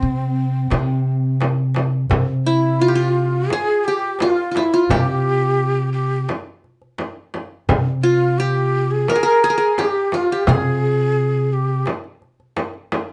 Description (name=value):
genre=Arabic maqam ensemble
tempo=86 BPM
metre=4/4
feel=straight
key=C maqam hijaz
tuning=A4 = 442 Hz
part: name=qanun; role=melody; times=0.0-11.8 s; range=E4 to Bb4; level=-21 LUFS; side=equal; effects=none
part: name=breathy ney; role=second line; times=0.0-11.9 s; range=C4 to Bb4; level=-24 LUFS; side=equal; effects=none
part: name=upright bass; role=bass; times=0.0-11.8 s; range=C3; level=-22 LUFS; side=equal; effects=none
part: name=darbuka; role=percussion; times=0.0-13.1 s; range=none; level=-26 LUFS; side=equal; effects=none
part: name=frame drum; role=percussion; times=0.7-13.1 s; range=none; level=-25 LUFS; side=equal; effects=none
room=moderate studio reverb, RT60 0.6 s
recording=nothing above 10.8 kHz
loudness=-19 LUFS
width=mono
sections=0.0-2.1 A section; 2.1-13.1 B section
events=none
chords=none